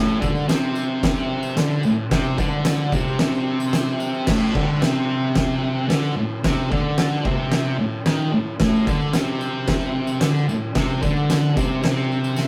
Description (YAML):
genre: garage rock duo or trio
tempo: 111 BPM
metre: 4/4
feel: straight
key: unclear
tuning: A4 = 440 Hz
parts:
  - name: thick fuzz guitar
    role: riff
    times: 0.0-12.5 s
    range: A2 to D#3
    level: -23 LUFS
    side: equal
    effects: distortion
  - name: tambourine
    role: percussion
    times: 0.1-4.2, 8.6-12.5 s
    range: none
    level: -44 LUFS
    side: equal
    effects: none
  - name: oversized low-tuned drum kit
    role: drums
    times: 0.2-12.5 s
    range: crash cymbal, kick drum, snare drum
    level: -25 LUFS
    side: equal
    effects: none
room: moderate studio reverb, RT60 0.5 s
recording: rough rehearsal-room recording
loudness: -21 LUFS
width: mono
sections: 0.0-4.3 A section; 4.3-12.5 A section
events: none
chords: none